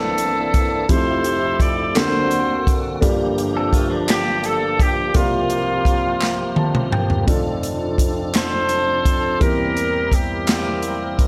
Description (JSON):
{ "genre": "slow gospel", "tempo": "56 BPM (dotted quarters)", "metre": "6/8", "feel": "straight", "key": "F major", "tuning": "A4 = 444 Hz", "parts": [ { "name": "clear horn section", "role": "melody", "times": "0.0-11.3 s", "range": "Bb3 to D5", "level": "-23 LUFS", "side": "equal", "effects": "plate reverb" }, { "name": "warm upright piano", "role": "accompaniment", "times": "0.0-11.3 s", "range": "F1 to A5", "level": "-26 LUFS", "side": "equal", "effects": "plate reverb" }, { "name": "tonewheel organ", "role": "sustained chords", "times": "0.0-11.3 s", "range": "E2 to Bb4", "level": "-28 LUFS", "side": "equal", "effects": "fast rotary speaker, chorus vibrato, plate reverb" }, { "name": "swinging big-band drum kit", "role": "drums", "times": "0.2-11.3 s", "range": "hi-hat, kick drum, snare drum, toms", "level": "-23 LUFS", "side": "equal", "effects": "none" }, { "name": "group handclap", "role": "percussion", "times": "2.0-10.8 s", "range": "none", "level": "-28 LUFS", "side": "equal", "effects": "none" }, { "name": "clean electric guitar", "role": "second line", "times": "3.6-4.9 s", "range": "F3 to A4", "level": "-29 LUFS", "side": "equal", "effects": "plate reverb" } ], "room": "moderate studio reverb, RT60 0.7 s", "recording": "none", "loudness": "-19 LUFS", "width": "mono", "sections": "0.0-7.3 A section; 7.3-11.3 B section", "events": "drum fill 6.2-7.3; upright piano fill 6.2-7.3", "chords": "0.0 C13; 0.9 Fmaj9; 2.0 D7b13; 3.0 Gm7; 5.2 C7sus4; 7.3 F6; 9.4 C7/E" }